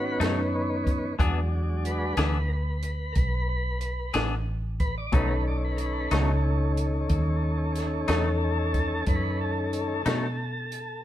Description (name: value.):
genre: slow blues.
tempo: 61 BPM (dotted quarters).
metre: 12/8.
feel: straight.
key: B mixolydian.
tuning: A4 = 441 Hz.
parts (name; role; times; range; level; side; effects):
tonewheel organ; sustained chords; 0.0-11.0 s; D#3 to D5; -29 LUFS; equal; slow rotary speaker.
vintage muted fingered electric bass; bass; 0.0-11.0 s; A1 to B2; -27 LUFS; equal; none.
semi-hollow electric guitar; accompaniment; 0.2-10.3 s; B2 to G#4; -30 LUFS; left 4 dB; harmonic tremolo.
compact cocktail drum kit; drums; 0.2-10.9 s; hi-hat, kick drum, snare drum; -28 LUFS; equal; none.
room: light reverb.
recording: band playing live in one room.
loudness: -24 LUFS.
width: side -12 dB against mid.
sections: 0.0-11.0 A section.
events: tonewheel organ solo 0.0-11.0.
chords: 0.0 B7; 1.2 E7; 5.1 B7.